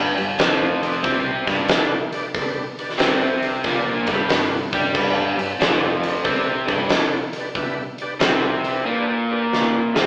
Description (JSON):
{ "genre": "blues rock power trio and southern rock", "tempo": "92 BPM", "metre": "4/4", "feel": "swing 67% on 8ths", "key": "G mixolydian", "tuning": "A4 = 440 Hz", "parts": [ { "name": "crunchy overdriven guitar", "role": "riff", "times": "0.0-10.1 s", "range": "F2 to G4", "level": "-21 LUFS", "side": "equal", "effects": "none" }, { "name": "fuzz fingered electric bass", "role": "bass", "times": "0.0-8.8 s", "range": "F1 to G2", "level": "-30 LUFS", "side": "equal", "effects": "overdrive" }, { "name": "overdriven tonewheel organ", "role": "sustained chords", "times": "0.1-10.1 s", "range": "D4 to F5", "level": "-27 LUFS", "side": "equal", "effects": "chorus vibrato, slow rotary speaker" }, { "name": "huge arena drum kit", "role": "drums", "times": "0.2-10.1 s", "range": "crash cymbal, hi-hat, kick drum, snare drum", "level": "-20 LUFS", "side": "equal", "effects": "none" } ], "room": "moderate large studio reverb, RT60 1.1 s", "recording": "band playing live in one room, AM radio sound", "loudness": "-18 LUFS", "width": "side -33 dB against mid", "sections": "0.0-10.1 A section", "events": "drum fill 9.5-10.1", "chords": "0.0 G" }